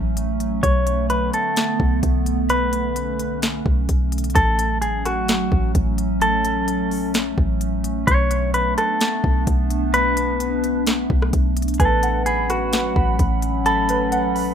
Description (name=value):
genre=hip hop, atmospheric cloud-rap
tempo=129 BPM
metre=4/4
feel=half-time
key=A major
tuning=A4 = 441 Hz
part: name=warbly tape-like pad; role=sustained chords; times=0.0-14.5 s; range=D3 to D4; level=-24 LUFS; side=equal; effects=chorus, built-in reverb, sidechain pumping
part: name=warm 808-style bass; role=bass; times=0.0-14.5 s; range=G#1 to B1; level=-23 LUFS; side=equal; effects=none
part: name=smooth R&B drum kit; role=drums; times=0.2-14.5 s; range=hi-hat, kick drum, rim click, snare drum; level=-23 LUFS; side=equal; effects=overdrive
part: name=clean electric guitar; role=melody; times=0.6-14.5 s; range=F#4 to C#5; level=-21 LUFS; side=left 1 dB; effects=tape echo
part: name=warbly lo-fi synth keys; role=arpeggios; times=11.8-14.5 s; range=B4 to B5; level=-23 LUFS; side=right 4 dB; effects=chorus, tape echo
room=light reverb, digital ambience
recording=rough home demo mix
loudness=-17 LUFS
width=side -8 dB against mid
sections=0.0-4.4 A section; 4.4-14.5 B section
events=none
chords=0.0 A6; 0.6 Bm9; 4.4 A6; 8.1 Bm7; 11.8 A69